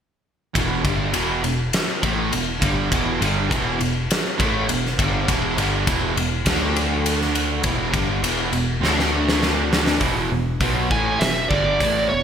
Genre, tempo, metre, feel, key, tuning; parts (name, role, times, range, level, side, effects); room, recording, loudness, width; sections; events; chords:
hard rock; 101 BPM; 4/4; straight; A4 = 440 Hz
distorted electric guitar; riff; 0.5-12.2 s; E2 to D4; -25 LUFS; right 11 dB; distortion
overdriven semi-hollow guitar; riff; 0.5-12.2 s; E2 to D4; -25 LUFS; left 6 dB; ensemble chorus
tine electric piano; bass; 0.6-12.2 s; E1 to D2; -26 LUFS; equal; medium stereo tremolo
big rock drum kit; drums; 0.6-11.9 s; hi-hat, kick drum, ride cymbal, snare drum; -22 LUFS; equal; gated reverb
dark smooth lead guitar; melody; 10.9-12.2 s; C#5 to G#5; -20 LUFS; right 2 dB; overdrive
moderate plate reverb, RT60 2.3 s; bright 1980s-style digital production; -18 LUFS; side -8 dB against mid
0.6-10.0 A section; 10.0-12.2 B section
drum fill 8.8-10.0
0.6 E5; 6.5 D5; 7.6 E5; 8.8 D5; 10.0 E5